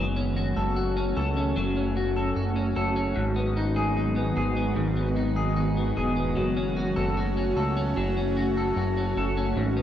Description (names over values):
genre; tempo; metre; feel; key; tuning
dream pop; 75 BPM; 4/4; straight; F# dorian; A4 = 442 Hz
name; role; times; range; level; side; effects
ethereal airy pad; sustained chords; 0.0-9.8 s; D#3 to F#4; -28 LUFS; right 1 dB; ensemble chorus, built-in reverb
clean electric guitar; arpeggios; 0.0-9.8 s; G#2 to A4; -28 LUFS; left 2 dB; analog chorus, analog delay
fat analog bass; bass; 0.0-9.8 s; E1 to C#2; -28 LUFS; equal; none
room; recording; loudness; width
moderate lush hall reverb, RT60 1.8 s, digital ambience; transformer saturation; -24 LUFS; side -10 dB against mid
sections
0.0-9.8 A section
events
none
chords
0.0 F#m; 3.2 G#m7; 6.4 F#m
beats
0.77 1.57 2.37 | 3.17 3.97 4.77 5.57 | 6.37 7.17 7.97 8.77 | 9.57